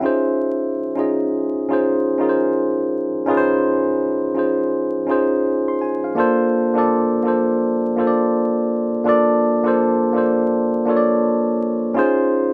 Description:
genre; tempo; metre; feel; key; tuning
R&B; 83 BPM; 4/4; swing 62% on 16ths; Bb major; A4 = 441 Hz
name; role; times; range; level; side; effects
bright tine electric piano; solo; 0.0-12.5 s; Bb3 to C6; -19 LUFS; equal; none
room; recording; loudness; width
moderate studio ambience, RT60 0.5 s; band playing live in one room, vinyl crackle; -19 LUFS; mono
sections
0.0-6.2 A section; 6.2-12.5 B section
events
none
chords
0.0 Dbmaj9; 6.2 Bbmaj9; 11.9 Dbmaj9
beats
| 0.38 1.11 1.83 2.55 | 3.27 4.00 4.72 5.44 | 6.17 6.89 7.61 8.34 | 9.06 9.78 10.50 11.23 | 11.95

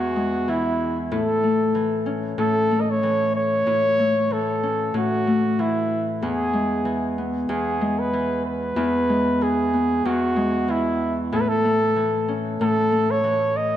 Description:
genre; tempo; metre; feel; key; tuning
folktronica; 94 BPM; 4/4; swing 56% on 16ths; unclear; A4 = 442 Hz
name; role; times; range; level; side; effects
mellow flugelhorn; melody; 0.0-13.8 s; E4 to D#5; -22 LUFS; right 1 dB; ping-pong delay
Celtic harp; arpeggios; 0.0-13.8 s; E2 to E4; -22 LUFS; left 1 dB; vintage 12-bit sampler grit
room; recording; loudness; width
wet recital hall reverb, RT60 1.8 s; none; -19 LUFS; side -11 dB against mid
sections
0.0-13.8 A section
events
none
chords
0.0 E; 1.1 A; 6.2 E; 11.3 A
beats
0.48 | 1.11 1.75 2.39 3.03 | 3.67 4.31 4.95 5.58 | 6.22 6.86 7.50 8.14 | 8.78 9.41 10.05 10.69 | 11.33 11.97 12.60 13.24

